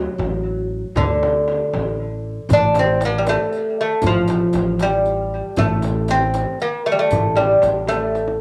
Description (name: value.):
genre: Persian modal ensemble.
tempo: 78 BPM (dotted quarters).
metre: 6/8.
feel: straight.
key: A dastgah shur.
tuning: A4 = 440 Hz.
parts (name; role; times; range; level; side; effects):
lute; melody; 0.0-8.4 s; D3 to D4; -20 LUFS; equal; cassette tape, plate reverb, analog delay.
upright bass; bass; 0.0-8.4 s; A1 to D2; -26 LUFS; equal; tube saturation.
frame drum; percussion; 0.2-8.0 s; none; -31 LUFS; equal; none.
tombak; percussion; 0.2-8.4 s; none; -28 LUFS; equal; none.
riq; percussion; 2.5-8.2 s; none; -40 LUFS; equal; none.
room: light reverb.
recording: home recording on cassette, small room ambience.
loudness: -19 LUFS.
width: mono.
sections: 0.0-2.5 A section; 2.5-8.4 B section.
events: drum fill 8.1.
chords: none.